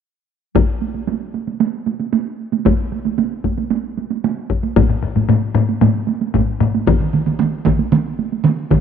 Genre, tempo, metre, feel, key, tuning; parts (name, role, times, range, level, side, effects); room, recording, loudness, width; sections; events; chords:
japanese traditional, taiko drum ensemble; 114 BPM; 4/4; straight
solo taiko drums; percussion; 0.6-8.8 s; -18 LUFS; left 4 dB
taiko ensemble; percussion; 0.6-8.8 s; -20 LUFS; right 10 dB
taiko ensemble; percussion; 4.8-6.7 s; -17 LUFS; left 6 dB
taiko ensemble; percussion; 6.9-8.8 s; -16 LUFS; right 4 dB
light reverb, small room ambience; 1960s-style stereo with parts hard left and right; -16 LUFS; side -8 dB against mid
0.6-4.8 A section; 4.8-8.8 B section